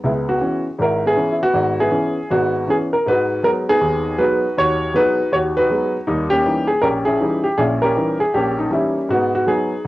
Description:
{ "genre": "solo jazz", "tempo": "159 BPM", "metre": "4/4", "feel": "swing 63% on 8ths", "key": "G# minor", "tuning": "A4 = 442 Hz", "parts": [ { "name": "warm baby grand piano", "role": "solo", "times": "0.0-9.9 s", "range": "G#1 to C#5", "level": "-16 LUFS", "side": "equal", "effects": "cassette tape" } ], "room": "moderate spring reverb, RT60 1.7 s, studio ambience", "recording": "home recording on cassette", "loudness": "-16 LUFS", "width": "side -17 dB against mid", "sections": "0.0-9.9 A section", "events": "none", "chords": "0.0 C#m7; 3.1 G#m7; 6.1 D#7b9; 9.1 G#m7", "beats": "| 0.04 0.41 0.79 1.17 | 1.55 1.93 2.30 2.68 | 3.06 3.43 3.81 4.19 | 4.56 4.94 5.32 5.70 | 6.07 6.45 6.83 7.21 | 7.58 7.96 8.34 8.71 | 9.09 9.47 9.85" }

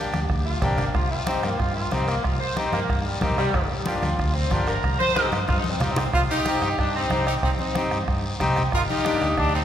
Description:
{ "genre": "latin, cumbia", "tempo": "185 BPM", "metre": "4/4", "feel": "straight", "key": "C minor", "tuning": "A4 = 443 Hz", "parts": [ { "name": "accordion", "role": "accompaniment", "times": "0.0-9.3 s", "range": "Bb3 to G4", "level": "-28 LUFS", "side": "left 2 dB", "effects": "none" }, { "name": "fingered electric bass", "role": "bass", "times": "0.1-9.6 s", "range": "G1 to G2", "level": "-28 LUFS", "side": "equal", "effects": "none" }, { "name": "bombo", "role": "percussion", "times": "0.1-9.5 s", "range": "none", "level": "-28 LUFS", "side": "right 1 dB", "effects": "none" }, { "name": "congas", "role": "percussion", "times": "0.1-9.6 s", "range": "none", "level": "-31 LUFS", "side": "left 1 dB", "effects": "none" }, { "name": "guiro", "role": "percussion", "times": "0.1-9.6 s", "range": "none", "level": "-37 LUFS", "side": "left 3 dB", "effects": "none" }, { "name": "mellow saxophone section", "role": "melody", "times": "0.4-9.6 s", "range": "G3 to C5", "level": "-26 LUFS", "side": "equal", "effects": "none" }, { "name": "brilliant trumpet", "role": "second line", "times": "6.1-9.6 s", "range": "Eb4 to C5", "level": "-30 LUFS", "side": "right 3 dB", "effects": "none" } ], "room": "wet church reverb, RT60 2.8 s", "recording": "recorded in a church or concert hall", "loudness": "-21 LUFS", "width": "side -10 dB against mid", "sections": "0.0-6.1 A section; 6.1-9.6 B section", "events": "saxophone section solo 0.0-6.1; drum fill 5.5-6.1", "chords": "0.0 Gm; 0.9 Cm; 3.5 Gm; 4.8 Cm; 8.7 Gm", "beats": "0.30 0.62 | 0.95 1.27 1.59 1.92 | 2.24 2.57 2.89 3.22 | 3.54 3.86 4.19 4.51 | 4.84 5.16 5.49 5.81 | 6.13 6.46 6.78 7.11 | 7.43 7.75 8.08 8.40 | 8.73 9.05 9.38" }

